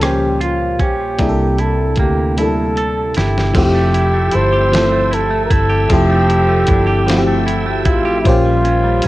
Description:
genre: slow six-eight R&B.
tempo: 51 BPM (dotted quarters).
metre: 6/8.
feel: straight.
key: F major.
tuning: A4 = 440 Hz.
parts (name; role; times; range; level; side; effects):
mellow flugelhorn; melody; 0.0-9.1 s; E4 to C5; -18 LUFS; equal; cassette tape.
semi-hollow electric guitar; second line; 0.0-9.1 s; Bb2 to A4; -22 LUFS; right 4 dB; tape echo.
FM electric piano; accompaniment; 0.0-9.1 s; F3 to C5; -19 LUFS; left 1 dB; chorus.
vintage muted fingered electric bass; bass; 0.0-9.1 s; F1 to D2; -18 LUFS; equal; none.
dusty soul sampler-style drum kit; drums; 0.0-9.1 s; crash cymbal, hi-hat, kick drum, rim click, snare drum; -18 LUFS; equal; cassette tape.
bright tonewheel organ; sustained chords; 3.5-9.1 s; Bb3 to E6; -28 LUFS; equal; chorus vibrato, slow rotary speaker.
dark horn section; stabs; 4.3-9.1 s; Bb2 to Bb4; -26 LUFS; left 1 dB; none.
room: digital ambience.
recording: home recording on cassette.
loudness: -12 LUFS.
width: side -17 dB against mid.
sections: 0.0-3.5 A section; 3.5-9.1 B section.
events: drum fill 2.4-3.5.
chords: 0.0 Bbm6; 1.2 C13; 3.5 Fmaj9; 8.3 Bbm6.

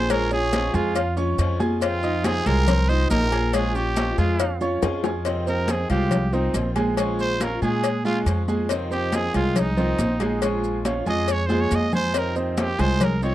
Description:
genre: latin, Cuban son and guajira.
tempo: 139 BPM.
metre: 4/4.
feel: straight.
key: F minor from 5.3 s.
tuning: A4 = 440 Hz.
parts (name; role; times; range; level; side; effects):
growling trumpet; melody; 0.0-13.3 s; Eb4 to Eb5; -26 LUFS; right 2 dB; none.
picked swing-style acoustic guitar; accompaniment; 0.0-13.3 s; C3 to F4; -30 LUFS; left 5 dB; none.
clear baby grand piano; arpeggios; 0.0-13.3 s; Ab3 to Ab6; -27 LUFS; right 4 dB; none.
upright bass; bass; 0.0-13.3 s; Bb1 to Bb2; -25 LUFS; equal; none.
congas; percussion; 0.1-13.3 s; none; -27 LUFS; left 1 dB; none.
cowbell and bongos; percussion; 0.1-13.2 s; none; -29 LUFS; left 10 dB; none.
maracas; percussion; 0.1-13.3 s; none; -39 LUFS; right 8 dB; none.
nylon-string guitar; second line; 4.6-5.2 s; F4 to Ab4; -31 LUFS; right 3 dB; none.
room: little or no reverb.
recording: dry, close 1970s-style studio recording.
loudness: -20 LUFS.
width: side -14 dB against mid.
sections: 0.0-5.3 A section; 5.3-13.3 B section.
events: drum fill 4.8-5.3, 11.5-12.1; trumpet solo 5.3-13.3.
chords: 0.1 Bbm7; 1.8 Fm7; 3.5 Bbm7; 5.3 Fm7; 7.0 Bbm7; 8.7 Fm7; 10.4 Bbm7; 12.1 Fm7.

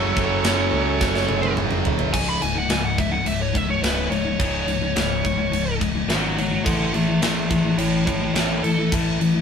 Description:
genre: heavy metal.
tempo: 106 BPM.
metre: 4/4.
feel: straight.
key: C# minor.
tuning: A4 = 441 Hz.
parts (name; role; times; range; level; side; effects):
high-gain lead guitar; melody; 0.0-8.9 s; E4 to B5; -25 LUFS; right 1 dB; distortion.
high-gain lead guitar; second line; 0.0-1.5 s; A4; -29 LUFS; right 6 dB; distortion.
heavy high-gain guitar; riff; 0.0-9.4 s; C#2 to A3; -24 LUFS; left 5 dB; distortion.
heavy high-gain guitar; riff; 0.0-2.1 s; F#2 to F#3; -25 LUFS; right 7 dB; distortion.
picked electric bass; bass; 0.0-9.4 s; C#1 to C#2; -26 LUFS; right 1 dB; none.
tight metal drum kit; drums; 0.2-9.3 s; crash cymbal, kick drum, snare drum, toms; -24 LUFS; right 1 dB; none.
room: light reverb.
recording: band playing live in one room.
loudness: -19 LUFS.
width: side -7 dB against mid.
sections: 0.0-2.1 A section; 2.1-9.4 B section.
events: drum fill 1.0-2.1; lead electric guitar solo 2.1-9.4.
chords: 0.0 F#m; 2.1 C#5; 6.7 A5.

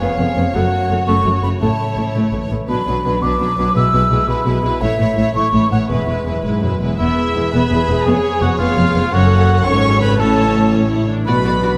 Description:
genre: cinematic, heroic adventure film score.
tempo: 112 BPM (dotted quarters).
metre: 6/8.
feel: straight.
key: E mixolydian.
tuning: A4 = 439 Hz.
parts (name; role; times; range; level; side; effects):
warm symphonic violin section; melody; 0.0-11.7 s; B4 to E5; -30 LUFS; equal; none.
concert flute; second line; 0.0-6.4 s; E5 to E6; -22 LUFS; equal; none.
dark symphonic violin section; second line; 0.0-11.8 s; D4 to C#6; -28 LUFS; equal; none.
warm symphonic viola section; accompaniment; 0.0-11.7 s; F#3 to A4; -24 LUFS; equal; none.
concert harp; arpeggios; 0.0-11.8 s; E2 to A4; -26 LUFS; equal; none.
clear symphonic double bass section; bass; 0.0-11.7 s; E1 to B1; -23 LUFS; equal; none.
warm symphonic cello section; bass; 0.0-11.7 s; E2 to B2; -22 LUFS; equal; none.
mellow cor anglais; second line; 7.0-11.8 s; E4 to C#5; -23 LUFS; equal; none.
room: moderate scoring stage reverb, RT60 1.9 s.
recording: none.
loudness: -16 LUFS.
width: mono.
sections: 0.0-7.0 A section; 7.0-11.8 A section.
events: none.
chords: 0.0 C#7/E#; 0.5 F#m; 1.6 A; 2.7 Bm; 3.8 E/B; 4.8 A; 5.9 E; 8.1 C#7/E#; 9.1 F#m; 10.2 A; 11.3 Bm.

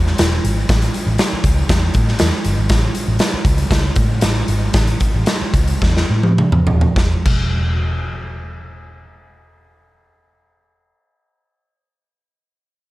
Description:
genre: uptempo 1960s-style soul.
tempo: 101-120 BPM.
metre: 4/4.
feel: straight.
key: unclear.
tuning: A4 = 439 Hz.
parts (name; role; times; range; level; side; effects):
vintage muted picked electric bass; bass; 0.0-10.9 s; D#1 to A2; -18 LUFS; equal; none.
raw garage drum kit; drums; 0.1-7.4 s; crash cymbal, hi-hat, kick drum, snare drum, toms; -16 LUFS; equal; none.
room: little or no reverb.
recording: none.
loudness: -14 LUFS.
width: side -18 dB against mid.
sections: 0.0-7.0 A section; 7.0-11.7 B section.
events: slowing down 2.7-7.0; drum fill 5.8-7.0.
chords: none.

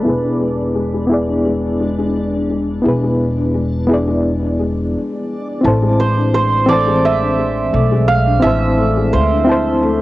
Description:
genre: trip hop.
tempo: 86 BPM.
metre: 4/4.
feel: swing 54% on 16ths.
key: unclear.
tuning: A4 = 438 Hz.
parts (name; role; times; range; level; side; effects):
santur; melody; 0.0-1.4, 6.0-10.0 s; A4 to F5; -18 LUFS; right 4 dB; vintage 12-bit sampler grit, cassette tape, dub echo.
reed electric piano; accompaniment; 0.0-10.0 s; E3 to A5; -18 LUFS; equal; overdrive, tremolo, cassette tape.
felt-muted upright piano; arpeggios; 0.0-10.0 s; G#3 to D4; -21 LUFS; left 4 dB; cassette tape, tape echo.
upright bass; bass; 0.0-10.0 s; E1 to D2; -19 LUFS; equal; none.
backwards swelling texture; texture; 0.0-4.9 s; D4 to D5; -28 LUFS; left 1 dB; built-in reverb, cassette tape.
room: light reverb.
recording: home recording on cassette, vinyl crackle, low-pass filter.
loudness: -13 LUFS.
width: side -17 dB against mid.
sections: 0.0-5.6 A section; 5.6-10.0 B section.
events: filter sweep on felt piano 0.0-5.6; filter sweep 0.0-5.6; stop 4.9-5.6.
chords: 0.1 E; 5.6 Amadd9.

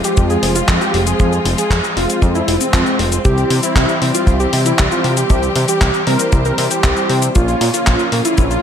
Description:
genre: italo disco.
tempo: 117 BPM.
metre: 4/4.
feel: straight.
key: F harmonic minor.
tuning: A4 = 440 Hz.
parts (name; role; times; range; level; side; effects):
wide unison lead; melody; 0.0-8.6 s; C4 to Bb4; -19 LUFS; equal; vintage 12-bit sampler grit, ping-pong delay.
clear studio string section; sustained chords; 0.0-8.6 s; Db3 to G4; -22 LUFS; left 1 dB; none.
mellow synth brass; stabs; 0.0-8.6 s; G3 to Db5; -22 LUFS; right 2 dB; chorus.
gated 80s digital drum machine; drums; 0.0-8.6 s; cabasa, handclaps, hi-hat; -19 LUFS; left 2 dB; gated reverb.
fat analog bass; bass; 0.2-8.6 s; F1 to C3; -18 LUFS; equal; none.
kick drum; drums; 0.2-8.5 s; none; -14 LUFS; equal; none.
room: light reverb, small room ambience.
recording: none.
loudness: -12 LUFS.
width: side -8 dB against mid.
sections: 0.0-8.6 A section.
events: none.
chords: 0.0 Fm; 3.2 C; 7.4 Bbm.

